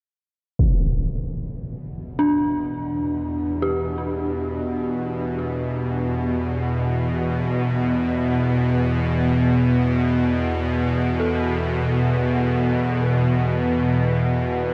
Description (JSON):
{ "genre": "dark ambient drone", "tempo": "free time", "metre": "none", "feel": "none", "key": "E minor", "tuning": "A4 = 440 Hz", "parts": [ { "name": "bowed-like drone", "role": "drone", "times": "1.6-14.7 s", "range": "E2 to B2", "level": "-23 LUFS", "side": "equal", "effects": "built-in reverb" }, { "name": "impact", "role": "percussion", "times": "0.6-0.8 s", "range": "none", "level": "-26 LUFS", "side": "equal", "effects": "low-pass filter on sfx" }, { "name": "dark detuned synth bell", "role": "arpeggios", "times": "2.2-14.7 s", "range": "D4 to A4", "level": "-29 LUFS", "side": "equal", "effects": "chorus, delay" } ], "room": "wet huge ambient reverb, RT60 7.9 s", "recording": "none", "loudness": "-22 LUFS", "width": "mono", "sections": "0.6-14.7 A section", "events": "fade-out on synth bell 0.6-14.7", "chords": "0.6 Em", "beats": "free time" }